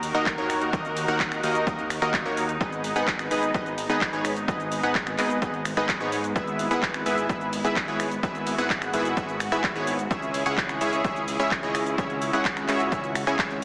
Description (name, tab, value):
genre	EDM, festival progressive house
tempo	128 BPM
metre	4/4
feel	straight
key	G# minor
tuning	A4 = 440 Hz
part	rich symphonic string section	sustained chords	0.0-13.6 s	C#3 to A#4	-34 LUFS	equal	sidechain pumping
part	fat analog bass	bass	0.0-13.6 s	G#1 to G#2	-36 LUFS	equal	sidechain pumping
part	big-room dance drum kit	drums	0.0-13.6 s	finger snaps, handclaps, hi-hat, shaker	-32 LUFS	equal	studio reverb
part	supersaw stab	riff	0.1-13.6 s	A#3 to G#5	-29 LUFS	equal	sidechain pumping, dub echo
part	electronic kick drum	drums	0.3-13.5 s	none	-34 LUFS	equal	overdrive, studio reverb
room	moderate lush hall reverb, RT60 1.8 s, digital ambience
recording	heavily compressed radio sound, small speaker sound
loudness	-26 LUFS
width	mono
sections	0.0-13.6 A section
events	none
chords	0.0 D#m; 2.6 G#m; 6.4 E/G#; 10.1 C#m